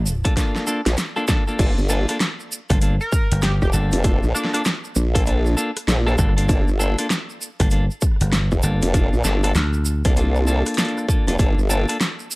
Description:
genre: glitch hop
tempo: 98 BPM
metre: 4/4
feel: swing 62% on 16ths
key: G minor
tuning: A4 = 440 Hz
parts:
  - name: dry thumbed slap bass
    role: bass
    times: 0.0-10.0 s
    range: G1 to D2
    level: -19 LUFS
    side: equal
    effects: none
  - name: tube shaker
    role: percussion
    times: 0.1-12.4 s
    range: none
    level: -31 LUFS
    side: right 3 dB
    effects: none
  - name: clean electric guitar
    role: stabs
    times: 0.2-12.0 s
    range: Bb3 to A4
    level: -25 LUFS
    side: left 1 dB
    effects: sidechain pumping, analog delay
  - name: dubstep drum kit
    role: drums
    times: 0.3-12.2 s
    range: crash cymbal, hi-hat, rim click, snare drum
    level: -24 LUFS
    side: equal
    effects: none
  - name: electronic kick drum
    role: drums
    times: 0.3-11.5 s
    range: none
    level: -19 LUFS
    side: equal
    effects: none
  - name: formant-sweep wobble bass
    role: bass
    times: 0.9-11.9 s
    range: F1 to C2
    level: -19 LUFS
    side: equal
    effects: chorus
  - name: sync lead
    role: melody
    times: 3.0-4.6 s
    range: D4 to Bb4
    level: -28 LUFS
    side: equal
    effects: chorus, analog delay
room: little or no reverb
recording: dry, gritty hardware recording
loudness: -17 LUFS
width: side -23 dB against mid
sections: 0.0-12.4 A section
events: drum fill 0.4-1.6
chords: 0.0 Gm7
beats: 0.37 0.98 | 1.59 2.21 2.82 3.43 | 4.04 4.66 5.27 5.88 | 6.49 7.11 7.72 8.33 | 8.94 9.55 10.17 10.78 | 11.39 12.00

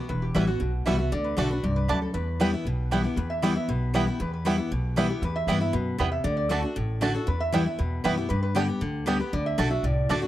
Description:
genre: bluegrass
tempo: 234 BPM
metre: 4/4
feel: straight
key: E minor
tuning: A4 = 440 Hz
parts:
  - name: lap resonator guitar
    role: melody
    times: 0.0-10.3 s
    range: F#4 to F#5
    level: -33 LUFS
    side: right 1 dB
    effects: none
  - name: picked steel-string acoustic guitar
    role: accompaniment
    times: 0.0-10.3 s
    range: E2 to G4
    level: -27 LUFS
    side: left 2 dB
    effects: none
  - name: upright bass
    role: bass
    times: 0.1-10.3 s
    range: E1 to G2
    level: -29 LUFS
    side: equal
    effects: none
  - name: mandolin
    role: stabs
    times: 0.3-10.2 s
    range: G3 to A5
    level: -32 LUFS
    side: right 5 dB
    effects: none
  - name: bluegrass banjo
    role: melody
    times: 0.4-10.2 s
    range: G3 to E4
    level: -33 LUFS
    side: right 4 dB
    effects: none
room: little or no reverb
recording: dry, close 1970s-style studio recording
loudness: -24 LUFS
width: side -14 dB against mid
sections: 0.0-3.2 A section; 3.2-10.3 B section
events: none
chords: 0.0 Emadd9; 1.1 D; 2.1 Em; 6.3 D; 7.3 Em; 8.3 G; 9.3 D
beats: | 0.09 0.35 0.61 0.86 | 1.12 1.38 1.64 1.89 | 2.15 2.40 2.66 2.92 | 3.17 3.43 3.69 3.94 | 4.20 4.46 4.71 4.97 | 5.23 5.48 5.74 6.00 | 6.25 6.51 6.76 7.02 | 7.28 7.53 7.79 8.05 | 8.30 8.56 8.81 9.07 | 9.33 9.58 9.84 10.10

